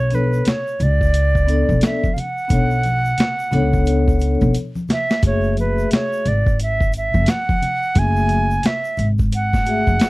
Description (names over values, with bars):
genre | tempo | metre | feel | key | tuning
hip hop, jazz-hop | 88 BPM | 4/4 | swing 62% on 16ths | F# minor | A4 = 440 Hz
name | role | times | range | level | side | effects
concert flute | melody | 0.0-10.1 s | B4 to G#5 | -21 LUFS | right 2 dB | none
upright bass | bass | 0.0-10.0 s | F#1 to C#2 | -19 LUFS | equal | none
vibraphone with soft mallets | accompaniment | 0.1-10.1 s | A3 to E5 | -22 LUFS | left 3 dB | none
boom bap sampler-style drum kit | drums | 0.1-10.1 s | hi-hat, kick drum, snare drum | -19 LUFS | equal | none
congas and egg shaker | percussion | 0.1-10.1 s | none | -29 LUFS | left 1 dB | none
room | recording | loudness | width
little or no reverb | dry, close 1970s-style studio recording, vinyl crackle | -16 LUFS | side -20 dB against mid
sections
0.0-5.2 A section; 5.2-10.1 A section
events
drum fill 4.5-5.2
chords
0.0 Bm9; 5.2 F#m9